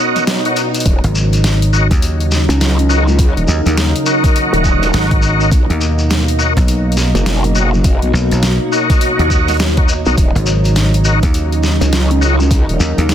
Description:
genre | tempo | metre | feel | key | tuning
glitch hop | 103 BPM | 4/4 | swing 62% on 16ths | Eb minor | A4 = 439 Hz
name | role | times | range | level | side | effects
warm analog pad | sustained chords | 0.0-13.1 s | B2 to D#4 | -22 LUFS | right 1 dB | chorus, sidechain pumping
tonewheel organ | stabs | 0.0-12.4 s | D#4 to Db5 | -19 LUFS | left 2 dB | chorus vibrato, slow rotary speaker, sidechain pumping, ping-pong delay
swell | sound effects | 0.0-0.9 s | none | -24 LUFS | right 3 dB | none
granular cloud pad | texture | 0.0-13.1 s | Eb4 to Gb5 | -22 LUFS | equal | built-in reverb, sidechain pumping
dubstep drum kit | drums | 0.2-13.1 s | hi-hat, snare drum | -20 LUFS | equal | overdrive, studio reverb
shekere | percussion | 0.2-13.1 s | none | -25 LUFS | left 3 dB | none
growl bass | bass | 0.9-12.8 s | Eb1 to Db2 | -14 LUFS | equal | chorus
electronic kick drum | drums | 0.9-12.7 s | none | -13 LUFS | equal | overdrive, studio reverb
dry thumbed slap bass | bass | 1.0-13.1 s | Ab1 to Eb2 | -14 LUFS | equal | none
room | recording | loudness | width
digital ambience | dense, heavily limited modern master | -11 LUFS | side -10 dB against mid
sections
0.0-13.1 A section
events
break 0.0-0.9; swell 0.0-0.9; drum fill 0.6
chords
0.0 Bmaj7; 0.9 Ebm7; 5.5 Bmaj7; 10.2 Ebm7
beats
0.28 | 0.86 1.44 2.02 2.60 | 3.19 3.77 4.35 4.93 | 5.52 6.10 6.68 7.26 | 7.85 8.43 9.01 9.60 | 10.18 10.76 11.34 11.93 | 12.51 13.09

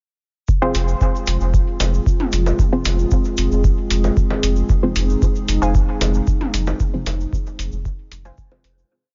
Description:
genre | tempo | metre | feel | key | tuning
dub techno | 114 BPM | 4/4 | straight | F minor | A4 = 440 Hz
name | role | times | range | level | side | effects
dark analog pad | sustained chords | 0.5-8.9 s | Ab3 to Ab4 | -27 LUFS | equal | chorus, sidechain pumping
electronic kick drum | drums | 0.5-8.5 s | none | -20 LUFS | equal | none
tube shaker | percussion | 0.5-8.9 s | none | -38 LUFS | equal | none
filtered dub chord stab | stabs | 0.6-8.6 s | C4 to C5 | -27 LUFS | equal | phaser, sidechain pumping, dub echo
warm sub bass | bass | 0.7-8.8 s | F1 | -22 LUFS | equal | sidechain pumping
electronic hi-hat | drums | 0.7-8.8 s | none | -26 LUFS | equal | overdrive
electronic bongos and toms | percussion | 1.8-8.6 s | none | -30 LUFS | equal | sidechain pumping on perc, sidechain pumping on toms, dub echo
warbly dusty pluck | riff | 5.6-8.4 s | C5 to Ab5 | -30 LUFS | equal | chorus, sidechain pumping, dub echo
room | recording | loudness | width
digital ambience | nothing above 7.5 kHz | -19 LUFS | mono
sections
0.5-8.9 groove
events
filter sweep on synth stab 0.5-8.9; fade-out 6.1-8.9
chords
0.5 Fm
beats
| 0.48 1.01 1.54 2.06 | 2.59 3.12 3.64 4.17 | 4.70 5.22 5.75 6.27 | 6.80 7.33 7.85 8.38

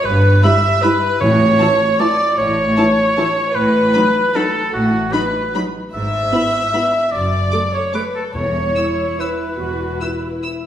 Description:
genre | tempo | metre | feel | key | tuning
classical, orchestral ballroom waltz | 136-166 BPM | 3/4 | rubato | A major | A4 = 441 Hz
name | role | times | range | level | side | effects
warm chamber violin section | second line | 0.0-10.4 s | F#4 to E5 | -22 LUFS | left 1 dB | none
warm oboe | second line | 0.0-10.4 s | F#4 to E5 | -18 LUFS | right 1 dB | none
warm symphonic cello section | bass | 0.1-9.9 s | E2 to A2 | -22 LUFS | equal | none
warm symphonic double bass section | bass | 0.1-9.9 s | E1 to A1 | -22 LUFS | equal | none
dark studio violin section | melody | 0.4-10.5 s | A5 to E6 | -29 LUFS | left 4 dB | none
dark symphonic viola section | accompaniment | 0.4-10.7 s | E3 to A4 | -23 LUFS | equal | none
timpani | percussion | 1.2-1.8, 8.3-8.9 s | E2 to A2 | -23 LUFS | equal | none
room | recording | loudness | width
wet recital hall reverb, RT60 1.4 s | heard from further back in the room | -14 LUFS | side -10 dB against mid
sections
0.0-10.7 A section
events
none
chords
0.1 Em/G; 1.2 A; 3.6 B7/A; 5.9 E/G#; 7.1 D/F#; 8.3 E5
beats
| 0.05 0.43 0.83 | 1.21 1.59 2.00 | 2.38 2.77 3.18 | 3.56 3.94 4.35 | 4.73 5.13 5.54 | 5.93 6.33 6.74 | 7.12 7.52 7.94 | 8.35 8.76 9.20 | 9.60 10.01 10.43

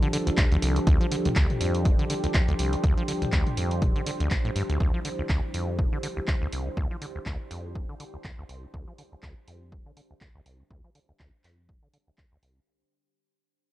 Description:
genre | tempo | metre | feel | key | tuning
acid house | 122 BPM | 4/4 | swing 56% on 16ths | D minor | A4 = 440 Hz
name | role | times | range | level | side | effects
warm analog pad | sustained chords | 0.0-12.7 s | F3 to A4 | -34 LUFS | right 1 dB | chorus, sidechain pumping
acid bass, saw | riff | 0.0-12.6 s | D1 to F3 | -29 LUFS | equal | tube saturation, sidechain pumping
punchy analog drum machine | drums | 0.0-12.5 s | handclaps, hi-hat, toms | -32 LUFS | equal | none
deep dark ambient pad | texture | 0.0-12.7 s | D4 to C5 | -34 LUFS | equal | chorus, built-in reverb, sidechain pumping
electronic kick drum | drums | 0.4-12.3 s | none | -25 LUFS | equal | none
room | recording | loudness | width
light reverb | dark, warm production | -24 LUFS | side -15 dB against mid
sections
0.0-12.7 A section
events
fade-out 0.0-12.7; filter sweep on acid bass 0.0-12.7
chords
0.0 Dm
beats
0.38 | 0.87 1.36 1.85 2.34 | 2.84 3.33 3.82 4.31 | 4.80 5.29 5.79 6.28 | 6.77 7.26 7.75 8.25 | 8.74 9.23 9.72 10.21 | 10.71 11.20 11.69 12.18

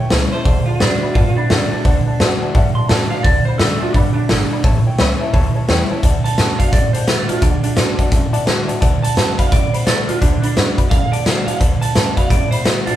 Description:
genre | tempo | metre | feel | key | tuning
rockabilly | 172 BPM | 4/4 | swing 62% on 8ths | D major | A4 = 440 Hz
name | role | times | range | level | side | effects
dark upright piano | accompaniment | 0.0-12.9 s | C#5 to B5 | -26 LUFS | left 4 dB | none
picked steel-string acoustic guitar | accompaniment | 0.0-13.0 s | E2 to F#4 | -25 LUFS | left 2 dB | none
upright bass | bass | 0.1-13.0 s | G1 to A2 | -22 LUFS | equal | none
raw garage drum kit | drums | 0.1-12.9 s | hi-hat, kick drum, snare drum | -15 LUFS | equal | none
electric guitar through a small old amp | melody | 0.3-13.0 s | D4 to C6 | -22 LUFS | right 5 dB | tape echo
room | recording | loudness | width
light reverb | band playing live in one room | -13 LUFS | side -12 dB against mid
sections
0.0-6.0 A section; 6.0-13.0 B section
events
none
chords
0.5 D; 4.6 A7; 6.0 D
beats
0.11 | 0.46 0.81 1.15 1.50 | 1.85 2.20 2.55 2.90 | 3.24 3.59 3.94 4.29 | 4.64 4.99 5.33 5.68 | 6.03 6.38 6.73 7.08 | 7.43 7.78 8.12 8.47 | 8.82 9.17 9.52 9.87 | 10.22 10.56 10.91 11.26 | 11.61 11.96 12.31 12.66

